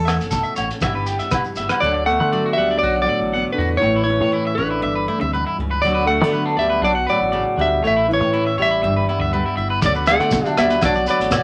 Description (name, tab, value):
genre	highlife guitar band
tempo	120 BPM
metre	4/4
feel	straight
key	D major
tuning	A4 = 443 Hz
part	picked steel-string acoustic guitar	accompaniment	0.0-11.4 s	G2 to A4	-27 LUFS	equal	none
part	electric guitar at the edge of break-up	arpeggios	0.0-11.4 s	D4 to F#5	-27 LUFS	equal	none
part	fingered electric bass	bass	0.0-11.4 s	F#1 to D3	-28 LUFS	equal	none
part	cloth-damped thuddy drum kit	drums	0.1-1.8, 9.8-11.4 s	hi-hat, kick drum, rim click	-27 LUFS	equal	none
part	agogo bells	percussion	0.1-1.8, 10.1-11.4 s	none	-30 LUFS	equal	none
part	shekere	percussion	0.1-1.7, 9.8-11.4 s	none	-32 LUFS	equal	none
part	semi-hollow electric guitar	melody	1.8-11.4 s	B4 to F#5	-22 LUFS	equal	none
part	dark alto saxophone	second line	1.8-11.4 s	D3 to A3	-27 LUFS	equal	none
part	congas	percussion	9.8-11.4 s	none	-28 LUFS	equal	none
room	wet club reverb, RT60 0.5 s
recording	none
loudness	-19 LUFS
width	mono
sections	0.0-1.8 A section; 1.8-11.4 B section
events	none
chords	0.0 A; 0.8 G6; 1.8 D6; 3.8 A; 4.8 G6; 5.8 D6; 7.8 A; 8.8 G6; 9.8 D6